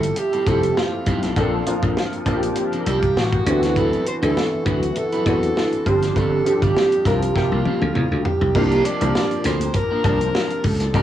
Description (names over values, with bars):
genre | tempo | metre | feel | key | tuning
polished 1980s jazz-funk pop | 100 BPM | 4/4 | swing 54% on 16ths | unclear | A4 = 440 Hz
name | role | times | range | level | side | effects
breathy alto saxophone | melody | 0.0-11.0 s | F4 to D5 | -24 LUFS | right 1 dB | cassette tape
warm baby grand piano | accompaniment | 0.0-11.0 s | E3 to A5 | -22 LUFS | equal | ensemble chorus, cassette tape, plate reverb
electric guitar at the edge of break-up | riff | 0.0-11.0 s | F3 to D5 | -28 LUFS | right 2 dB | lush chorus, cassette tape
dry thumbed slap bass | bass | 0.0-11.0 s | F1 to C3 | -22 LUFS | equal | none
tight funk drum kit | drums | 0.0-11.0 s | crash cymbal, hi-hat, kick drum, snare drum, toms | -24 LUFS | equal | cassette tape
room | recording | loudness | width
light reverb | home recording on cassette, small room ambience | -17 LUFS | side -11 dB against mid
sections
0.0-8.5 A section; 8.5-11.0 B section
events
drum fill 7.4-8.5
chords
0.0 Fmaj9; 1.4 Bbmaj9; 3.5 D13; 5.9 G7sus4; 7.4 C7sus4; 8.5 C9sus4